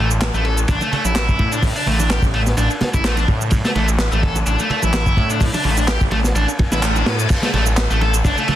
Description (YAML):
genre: breakbeat, breaks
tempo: 127 BPM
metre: 4/4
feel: swing 55% on 16ths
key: unclear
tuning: A4 = 440 Hz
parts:
  - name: overdriven electric guitar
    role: riff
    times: 0.0-8.6 s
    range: A3 to A4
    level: -21 LUFS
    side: equal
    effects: ping-pong delay
  - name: phased detuned saw bass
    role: bass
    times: 0.0-8.4 s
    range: A1 to A2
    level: -19 LUFS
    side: equal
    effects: phaser
  - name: crunchy breakbeat drum kit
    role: drums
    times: 0.1-8.6 s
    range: crash cymbal, hi-hat, kick drum, ride cymbal, snare drum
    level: -20 LUFS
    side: equal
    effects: none
  - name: electronic shaker and handclaps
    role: drums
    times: 0.1-8.5 s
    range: none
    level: -27 LUFS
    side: right 1 dB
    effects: none
  - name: congas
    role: percussion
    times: 0.2-8.6 s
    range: none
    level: -28 LUFS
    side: right 3 dB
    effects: none
  - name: reverse cymbal and downlifter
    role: sound effects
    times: 6.6-8.6 s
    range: none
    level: -29 LUFS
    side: left 4 dB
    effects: none
room: studio ambience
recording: dense, heavily limited modern master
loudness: -15 LUFS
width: side -12 dB against mid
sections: 0.0-7.3 A section; 7.3-8.6 B section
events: reverse cymbal 6.6-7.3; band accent 6.8; drop 7.3-8.6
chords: 0.0 A5